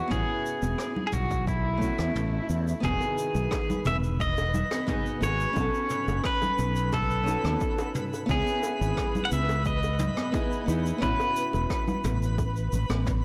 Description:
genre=sunset chillout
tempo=88 BPM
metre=4/4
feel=straight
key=E major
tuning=A4 = 440 Hz
part: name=pedal steel guitar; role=melody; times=0.0-13.0 s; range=E4 to F#5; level=-33 LUFS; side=equal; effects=digital delay
part: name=nylon-string guitar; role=accompaniment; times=0.0-12.7 s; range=D#3 to A4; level=-36 LUFS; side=equal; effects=delay
part: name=mellow fretless electric bass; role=bass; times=0.1-13.2 s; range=E1 to E2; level=-30 LUFS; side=equal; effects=tube saturation
part: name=electronic kick drum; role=drums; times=0.1-13.2 s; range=none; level=-35 LUFS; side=equal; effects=none
part: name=jazz brush drum kit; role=drums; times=0.1-13.2 s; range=rim click, shaker, toms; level=-40 LUFS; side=equal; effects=soft clipping on snare
part: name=congas and bongos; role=percussion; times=0.6-13.0 s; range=none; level=-37 LUFS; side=equal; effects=none
part: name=swell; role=sound effects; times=2.1-2.8 s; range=none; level=-43 LUFS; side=equal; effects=none
part: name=twinkling granular texture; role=texture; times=3.4-13.2 s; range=B4 to B5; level=-42 LUFS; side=equal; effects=built-in reverb
room=light reverb, small room ambience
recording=blown-out, overdriven recording, overdrive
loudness=-27 LUFS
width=mono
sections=0.0-2.8 A section; 2.8-13.2 B section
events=filter sweep on nylon-string guitar 0.0-2.8; swell 2.1-2.8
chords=0.1 A69 (rootless); 1.5 B7sus4; 2.8 Emaj7; 5.6 B9; 8.3 C#m9; 11.0 A69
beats=| 0.11 0.79 1.47 2.15 | 2.84 3.52 4.20 4.88 | 5.56 6.25 6.93 7.61 | 8.29 8.97 9.65 10.34 | 11.02 11.70 12.38 13.06

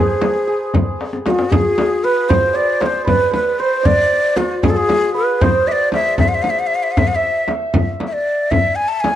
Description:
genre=Persian modal ensemble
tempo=77 BPM (dotted quarters)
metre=6/8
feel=straight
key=unclear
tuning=A4 = 440 Hz
part: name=breathy ney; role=melody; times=0.0-9.2 s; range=F4+43c to A5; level=-17 LUFS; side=equal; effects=tape echo
part: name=santur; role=second line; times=0.0-9.2 s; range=F4+45c to E5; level=-21 LUFS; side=right 2 dB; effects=none
part: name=frame drum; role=percussion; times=0.2-9.2 s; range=none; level=-20 LUFS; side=right 2 dB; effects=none
part: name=tombak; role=percussion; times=0.2-9.2 s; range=none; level=-20 LUFS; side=left 3 dB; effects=none
room=light reverb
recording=dark, warm production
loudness=-14 LUFS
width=side -11 dB against mid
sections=0.0-7.7 A section; 7.7-9.2 B section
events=drum fill 1.0-1.5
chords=none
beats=0.74 | 1.52 2.30 | 3.08 3.85 | 4.63 5.41 | 6.19 6.97 | 7.75 8.53

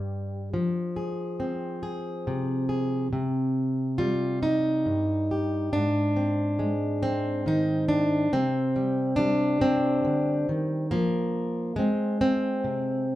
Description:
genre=folk, solo fingerstyle acoustic guitar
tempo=46 BPM (dotted quarters)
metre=6/8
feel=straight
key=C minor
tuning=A4 = 440 Hz
part: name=fingerpicked plugged-in steel-string acoustic guitar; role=solo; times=0.0-13.2 s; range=G2 to Ab4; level=-24 LUFS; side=equal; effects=none
room=moderate large studio reverb, RT60 0.8 s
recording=band playing live in one room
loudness=-24 LUFS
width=side -15 dB against mid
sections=0.0-13.2 A section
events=none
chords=0.0 N.C.; 0.5 Fm; 3.1 Cm; 5.7 Ab; 8.3 Cm; 10.9 Fm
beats=| 0.53 1.82 | 3.12 4.41 | 5.71 7.01 | 8.31 9.61 | 10.90 12.20

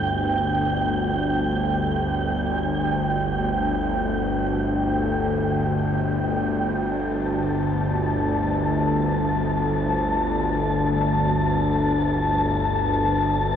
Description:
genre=dark ambient drone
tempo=free time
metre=none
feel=none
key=unclear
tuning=A4 = 440 Hz
part: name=bowed-like drone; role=drone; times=0.0-13.6 s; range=G1 to D2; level=-22 LUFS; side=equal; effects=built-in reverb
part: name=wind-like tuned noise texture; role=texture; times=0.0-13.6 s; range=G5 to A5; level=-26 LUFS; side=equal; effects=built-in reverb, shimmer reverb
room=wet huge ambient reverb, RT60 8.0 s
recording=worn, warbling old tape, cassette tape, warbly pitch drift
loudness=-20 LUFS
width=side -8 dB against mid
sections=0.0-13.6 A section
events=none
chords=0.0 Gsus2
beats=free time

